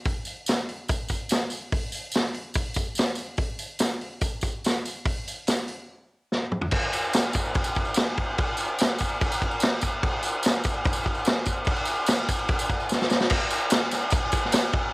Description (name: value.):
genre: rock.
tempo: 145 BPM.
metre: 4/4.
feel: straight.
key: none.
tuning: none.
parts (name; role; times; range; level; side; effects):
tambourine; percussion; 0.0-14.6 s; none; -34 LUFS; right 2 dB; none.
vintage drum kit; drums; 0.1-14.8 s; crash cymbal, hi-hat, kick drum, snare drum, toms; -24 LUFS; equal; none.
room: little or no reverb.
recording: home recording on cassette.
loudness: -23 LUFS.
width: side -29 dB against mid.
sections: 0.0-6.7 A section; 6.7-13.3 B section; 13.3-14.9 C section.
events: break 5.9-6.7; drum fill 6.3-6.7, 12.9-13.3.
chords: none.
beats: | 0.05 0.47 0.88 1.30 | 1.71 2.13 2.55 2.96 | 3.38 3.80 4.22 4.63 | 5.05 5.47 5.88 6.30 | 6.72 7.13 7.55 7.96 | 8.38 8.79 9.20 9.62 | 10.03 10.44 10.85 11.26 | 11.67 12.08 12.49 12.90 | 13.31 13.72 14.13 14.54.